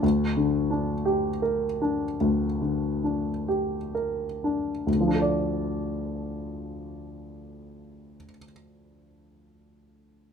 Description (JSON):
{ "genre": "classical", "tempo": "40-60 BPM", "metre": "4/4", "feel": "rubato", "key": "D minor", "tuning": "A4 = 436 Hz", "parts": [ { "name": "warm baby grand piano", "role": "accompaniment", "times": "0.0-10.3 s", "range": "D2 to D5", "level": "-25 LUFS", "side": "left 1 dB", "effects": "none" } ], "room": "light reverb", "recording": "none", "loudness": "-24 LUFS", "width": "side -6 dB against mid", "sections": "0.0-4.9 A section; 4.9-9.7 B section", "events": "slowing down 0.0-4.9", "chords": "0.0 Gm/D; 4.9 Dm" }